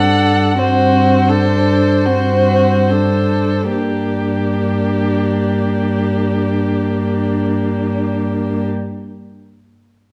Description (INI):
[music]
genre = classical, slow romantic movement for string quartet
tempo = 34-44 BPM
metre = 4/4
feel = rubato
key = G minor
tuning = A4 = 442 Hz
[part]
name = warm violin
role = melody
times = 0.0-8.7 s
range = G4 to F#5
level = -22 LUFS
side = equal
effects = none
[part]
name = rich violin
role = second line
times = 0.0-8.7 s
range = D4 to A4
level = -23 LUFS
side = equal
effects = none
[part]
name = dark viola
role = accompaniment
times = 0.0-8.7 s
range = Bb3 to D4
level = -21 LUFS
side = equal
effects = none
[part]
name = warm cello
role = bass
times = 0.0-8.7 s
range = G2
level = -20 LUFS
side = equal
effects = none
[sound]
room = wet recital hall reverb, RT60 1.5 s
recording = none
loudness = -16 LUFS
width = mono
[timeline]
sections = 0.0-3.7 A section; 3.7-9.8 B section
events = slowing down 0.0-3.7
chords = 0.0 D7/G; 3.7 Gm